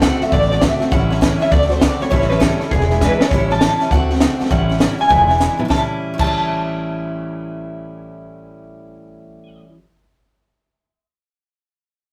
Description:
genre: rockabilly.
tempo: 201 BPM.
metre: 4/4.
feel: swing 64% on 8ths.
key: A mixolydian.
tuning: A4 = 439 Hz.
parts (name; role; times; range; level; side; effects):
electric guitar through a small old amp; melody; 0.0-9.6 s; G#4 to A5; -21 LUFS; equal; tremolo, slapback echo.
honky-tonk upright piano; accompaniment; 0.0-9.6 s; B4 to B5; -32 LUFS; equal; none.
picked steel-string acoustic guitar; accompaniment; 0.0-9.8 s; E2 to F#4; -25 LUFS; equal; none.
upright bass; bass; 0.0-9.6 s; E1 to D2; -23 LUFS; equal; none.
compact cocktail drum kit; drums; 0.0-6.3 s; crash cymbal, hi-hat, kick drum, snare drum, toms; -21 LUFS; equal; none.
room: moderate studio reverb, RT60 0.6 s.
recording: rough rehearsal-room recording.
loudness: -16 LUFS.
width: mono.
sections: 0.0-3.3 A section; 3.3-5.7 B section; 5.7-8.1 C section.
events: drum fill 3.0, 5.4.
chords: 0.0 D7; 0.9 A7; 1.5 D7; 2.1 A7; 2.7 E7; 3.3 A7; 3.9 D7; 4.5 A7; 5.1 E7; 5.7 A7.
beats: 0.03 0.33 0.62 | 0.92 1.22 1.52 1.82 | 2.12 2.42 2.71 3.01 | 3.31 3.61 3.91 4.21 | 4.51 4.81 5.11 5.41 | 5.71 6.00 6.30 6.60 | 6.90 7.20 7.50 7.80.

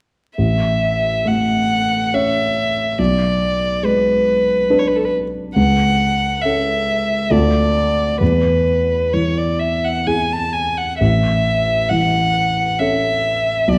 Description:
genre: classical, romantic duo for violin and grand piano.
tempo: 64-70 BPM.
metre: 3/4.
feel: rubato.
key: A major.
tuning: A4 = 443 Hz.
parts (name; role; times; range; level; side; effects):
warm violin; melody; 0.4-13.8 s; A4 to A5; -20 LUFS; equal; none.
dark grand piano; accompaniment; 0.4-13.8 s; A1 to C#5; -20 LUFS; equal; none.
room: wet recital hall reverb, RT60 1.3 s.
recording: vinyl crackle.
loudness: -17 LUFS.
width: mono.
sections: 0.4-13.8 A section.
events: none.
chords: 0.4 A; 3.0 G#dim/B; 5.6 A/C#; 7.3 Dm; 8.2 E; 11.0 A.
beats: | 0.37 1.25 2.13 | 2.99 3.84 4.71 | 5.57 6.44 7.32 | 8.21 9.14 10.07 | 11.00 11.90 12.79 | 13.67.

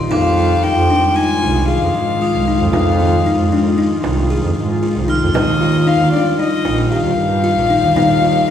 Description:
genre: contemporary instrumental, chamber music in an uneven meter.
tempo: 115 BPM.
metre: 5/4.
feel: straight.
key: F dorian.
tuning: A4 = 439 Hz.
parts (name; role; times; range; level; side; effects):
ethereal airy pad; sustained chords; 0.0-8.5 s; Eb3 to F4; -20 LUFS; left 1 dB; ensemble chorus, built-in reverb.
buzzing kalimba; arpeggios; 0.0-8.5 s; D4 to Ab4; -18 LUFS; left 2 dB; none.
warm double bass; bass; 0.0-8.5 s; Bb1 to Ab2; -18 LUFS; right 3 dB; none.
crotales; texture; 0.0-5.6 s; C6 to F6; -27 LUFS; right 1 dB; none.
dark violin; melody; 0.1-8.5 s; D5 to Ab5; -18 LUFS; left 5 dB; none.
frame drum; percussion; 0.1-8.2 s; none; -25 LUFS; right 4 dB; none.
room: wet recital hall reverb, RT60 1.5 s.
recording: recorded in a church or concert hall.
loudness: -13 LUFS.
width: side -9 dB against mid.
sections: 0.0-8.5 A section.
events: none.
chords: 0.1 Fm7; 5.3 Ebadd9.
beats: | 0.11 0.63 1.16 1.68 2.21 | 2.73 3.26 3.78 4.30 4.83 | 5.35 5.87 6.39 6.92 7.44 | 7.96 8.48.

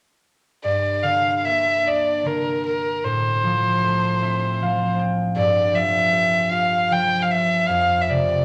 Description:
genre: celtic folk, Celtic slow air.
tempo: 76 BPM.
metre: 3/4.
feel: rubato.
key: G dorian.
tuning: A4 = 445 Hz.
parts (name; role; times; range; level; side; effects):
dark fiddle; melody; 0.6-8.4 s; Bb4 to G5; -22 LUFS; equal; none.
concert harp; accompaniment; 0.6-8.4 s; F2 to G5; -26 LUFS; equal; none.
room: moderate large studio reverb, RT60 0.7 s.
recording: none.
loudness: -20 LUFS.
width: mono.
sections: 0.6-8.4 A section.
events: harp fill 3.8-5.4.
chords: 0.6 Gm; 3.0 F/A; 5.4 Dmadd11/G (rootless); 7.7 F5.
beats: | 0.63 1.44 2.25 | 3.04 3.83 4.61 | 5.36 6.13 6.91 | 7.70.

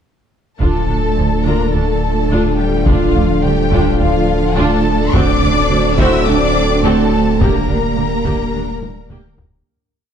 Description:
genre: cinematic, hybrid orchestral and electronic film score.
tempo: 106 BPM.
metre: 4/4.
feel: straight.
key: D minor.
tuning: A4 = 440 Hz.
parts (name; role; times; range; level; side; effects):
warm symphonic violin section; melody; 0.6-9.4 s; F5 to E6; -22 LUFS; left 4 dB; none.
warm symphonic violin section; second line; 0.6-9.3 s; F4 to E5; -23 LUFS; left 3 dB; none.
rich symphonic viola section; accompaniment; 0.6-9.4 s; D3 to G4; -22 LUFS; right 2 dB; none.
airy breathy pad; sustained chords; 0.6-9.7 s; A3 to D5; -23 LUFS; equal; chorus.
warm French horn section; sustained chords; 0.6-9.4 s; Bb3 to Bb4; -22 LUFS; left 2 dB; none.
warm trombone section; sustained chords; 0.6-9.4 s; D3 to G3; -24 LUFS; right 4 dB; none.
pure sine sub bass; bass; 0.6-9.6 s; D1; -20 LUFS; left 1 dB; none.
rich symphonic cello section; bass; 0.6-9.4 s; F3 to E4; -21 LUFS; right 4 dB; none.
warm symphonic double bass section; bass; 0.6-9.2 s; D2; -21 LUFS; right 4 dB; none.
taiko ensemble; drums; 0.6-9.6 s; none; -19 LUFS; equal; none.
room: moderate scoring stage reverb, RT60 1.6 s.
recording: dark, warm production.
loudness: -12 LUFS.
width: side -8 dB against mid.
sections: 0.6-9.7 theme.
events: fade-out 7.4-9.7; drum fill 8.8-9.7.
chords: 0.6 Dm; 5.1 D7; 7.4 Gm/D.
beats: | 0.61 1.17 1.74 2.30 | 2.87 3.44 4.00 4.57 | 5.13 5.70 6.27 6.83 | 7.40 7.96 8.53 9.10.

